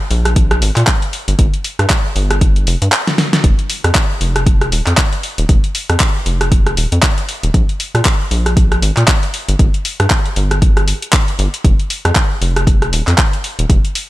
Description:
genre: deep house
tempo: 117 BPM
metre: 4/4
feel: swing 58% on 16ths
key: F minor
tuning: A4 = 440 Hz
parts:
  - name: rubbery square bass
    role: bass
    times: 0.1-13.8 s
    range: Eb1 to Bb2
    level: -15 LUFS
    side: equal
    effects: sidechain pumping
  - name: deep house drum kit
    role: drums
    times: 0.1-14.1 s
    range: handclaps, hi-hat, rim click, snare drum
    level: -17 LUFS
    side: equal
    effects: none
  - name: electronic kick drum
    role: drums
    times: 0.4-13.8 s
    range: none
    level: -13 LUFS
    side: equal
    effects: none
room: little or no reverb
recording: none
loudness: -12 LUFS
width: side -17 dB against mid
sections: 0.0-14.1 A section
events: drum fill 3.1-3.4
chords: none

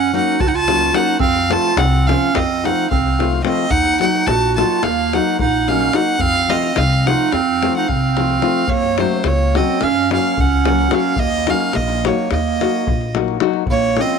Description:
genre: balkan folk, Balkan wedding band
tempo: 216 BPM (eighths)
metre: 9/8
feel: straight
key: Eb dorian sharp4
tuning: A4 = 440 Hz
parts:
  - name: clear violin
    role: melody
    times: 0.0-14.2 s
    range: C5 to A5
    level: -20 LUFS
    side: left 1 dB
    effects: none
  - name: warm clarinet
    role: second line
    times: 0.0-14.2 s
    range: A3 to Gb4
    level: -19 LUFS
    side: right 12 dB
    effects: none
  - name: upright bass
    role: bass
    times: 0.0-14.0 s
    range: Bb1 to Gb2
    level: -21 LUFS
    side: left 1 dB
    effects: none
  - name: nylon-string guitar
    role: accompaniment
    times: 0.1-14.2 s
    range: F3 to Gb4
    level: -22 LUFS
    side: left 14 dB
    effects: none
  - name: davul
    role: percussion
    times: 0.4-14.1 s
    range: none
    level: -23 LUFS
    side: left 5 dB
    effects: none
room: light reverb, small room ambience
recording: 1960s-style stereo with parts hard left and right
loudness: -14 LUFS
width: side -6 dB against mid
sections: 0.0-13.7 A section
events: none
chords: 0.0 Gb; 1.2 F; 3.7 Ebm; 6.2 F; 8.7 Gb; 11.2 Ebm; 13.7 Bbm

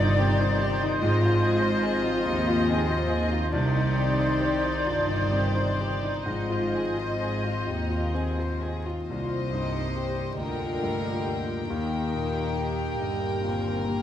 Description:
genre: cinematic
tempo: 42-48 BPM (dotted quarters)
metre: 6/8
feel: rubato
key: C minor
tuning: A4 = 441 Hz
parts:
  - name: dark symphonic violin section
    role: melody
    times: 0.0-14.0 s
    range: D5 to G5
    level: -36 LUFS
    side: left 3 dB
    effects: none
  - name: mellow silver concert flute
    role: second line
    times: 0.0-8.7 s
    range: D5 to Eb5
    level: -35 LUFS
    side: left 2 dB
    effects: none
  - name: warm clarinet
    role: second line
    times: 0.0-8.7 s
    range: Eb4 to F4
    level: -35 LUFS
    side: left 2 dB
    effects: none
  - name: warm oboe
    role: second line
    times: 0.0-8.7 s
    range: C5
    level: -33 LUFS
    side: right 2 dB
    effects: none
  - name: warm symphonic violin section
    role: second line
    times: 0.0-14.0 s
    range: D4 to C5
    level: -35 LUFS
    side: left 3 dB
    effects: none
  - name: clear concert grand piano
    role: accompaniment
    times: 0.0-14.0 s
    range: C2 to Eb5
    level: -31 LUFS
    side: equal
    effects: none
  - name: dark symphonic viola section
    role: accompaniment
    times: 0.0-14.0 s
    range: D3 to G4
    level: -35 LUFS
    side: equal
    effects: none
  - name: mellow French horn section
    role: sustained chords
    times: 0.0-14.0 s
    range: Eb3 to Eb5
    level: -33 LUFS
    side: left 4 dB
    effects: none
  - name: rich symphonic cello section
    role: bass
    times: 0.0-14.0 s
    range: Eb2 to Eb3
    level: -31 LUFS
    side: right 1 dB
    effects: none
  - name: warm symphonic double bass section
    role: bass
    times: 0.0-14.0 s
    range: G1 to Eb2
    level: -31 LUFS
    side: right 1 dB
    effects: none
room: moderate scoring stage reverb, RT60 2.0 s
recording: vinyl crackle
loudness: -24 LUFS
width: side -10 dB against mid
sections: 0.0-9.1 A section; 9.1-14.0 B section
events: none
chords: 0.0 Cmadd9; 1.0 Ab6; 3.5 Cmadd9; 6.3 Ab6; 9.1 Cm7; 11.7 Eb

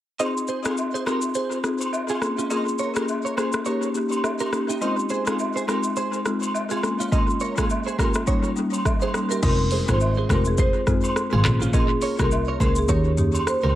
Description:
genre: afrobeats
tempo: 104 BPM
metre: 4/4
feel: swing 58% on 16ths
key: F minor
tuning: A4 = 440 Hz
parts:
  - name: marimba with medium mallets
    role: accompaniment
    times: 0.2-13.4 s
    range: G3 to Ab4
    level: -26 LUFS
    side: left 3 dB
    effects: tape echo
  - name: direct-recorded clean electric guitar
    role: riff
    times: 0.2-13.7 s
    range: Db4 to Eb5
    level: -30 LUFS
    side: right 5 dB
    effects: ensemble chorus, tape echo
  - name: afro-pop drum kit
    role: drums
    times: 0.2-13.6 s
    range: crash cymbal, handclaps, hi-hat, kick drum, rim click, shaker, toms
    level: -26 LUFS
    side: equal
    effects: tape echo
  - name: agogo bells and woodblock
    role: percussion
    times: 0.2-13.7 s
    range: none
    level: -30 LUFS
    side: right 2 dB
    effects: tape echo
  - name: marimba with medium mallets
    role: melody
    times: 9.4-13.8 s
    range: Ab4 to Db5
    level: -27 LUFS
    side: equal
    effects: tape echo
  - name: dark double bass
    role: bass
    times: 9.4-13.8 s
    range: F1 to Eb2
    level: -22 LUFS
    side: equal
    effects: none
room: light reverb, small room reverb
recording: echo-heavy mix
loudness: -20 LUFS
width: side -13 dB against mid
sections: 0.2-9.4 A section; 9.4-13.8 B section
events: none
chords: 0.2 Fm7; 2.2 Bbm7; 3.7 Eb7; 4.8 Fm7; 6.8 Bbm7; 8.3 Eb7; 9.4 Fm7; 11.4 Bbm7; 12.9 Eb7

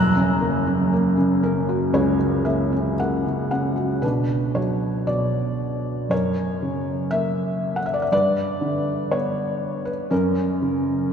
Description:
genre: classical, lyrical solo piano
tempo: 57-61 BPM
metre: 4/4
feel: rubato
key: unclear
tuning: A4 = 438 Hz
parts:
  - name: felt-muted upright piano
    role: solo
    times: 0.0-11.1 s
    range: F#1 to F#6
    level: -20 LUFS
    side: equal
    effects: none
room: wet cathedral reverb, RT60 4.3 s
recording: recorded in a church or concert hall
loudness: -20 LUFS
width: side -7 dB against mid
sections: 0.0-4.0 A section; 4.0-11.1 B section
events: felt piano fill 0.9-4.0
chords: 0.0 F#; 4.0 Bm; 6.1 F#; 8.1 G; 10.1 F#

